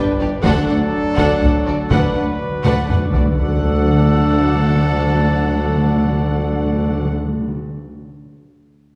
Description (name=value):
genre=cinematic, epic orchestral film score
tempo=123 BPM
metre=3/4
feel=straight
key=D major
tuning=A4 = 440 Hz
part: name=dark symphonic violin section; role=melody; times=0.0-7.1 s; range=D5 to F#5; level=-32 LUFS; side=equal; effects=none
part: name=clear studio violin section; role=second line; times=0.0-7.1 s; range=F#4 to B4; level=-32 LUFS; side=equal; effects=none
part: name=warm symphonic viola section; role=accompaniment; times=0.0-7.1 s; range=D4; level=-28 LUFS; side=equal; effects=none
part: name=dark French horn section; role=sustained chords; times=0.0-7.1 s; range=F#3 to D4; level=-27 LUFS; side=equal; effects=none
part: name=pipe organ, principal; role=sustained chords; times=0.0-7.1 s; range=D4 to D5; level=-29 LUFS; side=equal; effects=none
part: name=clear trumpet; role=stabs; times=0.0-7.1 s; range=A4 to B4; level=-28 LUFS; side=equal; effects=none
part: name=rich symphonic cello section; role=bass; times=0.0-7.1 s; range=D2 to G2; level=-25 LUFS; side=equal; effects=none
part: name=rich symphonic double bass section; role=bass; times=0.0-7.1 s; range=G1 to D2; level=-26 LUFS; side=equal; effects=none
part: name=warm tuba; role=bass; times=0.0-7.1 s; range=G1 to D2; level=-25 LUFS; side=equal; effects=none
part: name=taiko ensemble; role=drums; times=0.4-3.4 s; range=none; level=-23 LUFS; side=equal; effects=none
part: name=timpani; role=percussion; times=1.9-7.6 s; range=D3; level=-25 LUFS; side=equal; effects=none
room=wet scoring stage reverb, RT60 1.7 s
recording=heard from further back in the room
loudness=-17 LUFS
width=mono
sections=0.0-3.4 A section; 3.4-6.3 B section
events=timpani fill 1.9-3.4; drum fill 2.6-3.4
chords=0.5 D; 1.9 Bm/D; 3.4 D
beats=| 0.45 0.94 1.43 | 1.92 2.40 2.89 | 3.38 3.87 4.36 | 4.85 5.34 5.83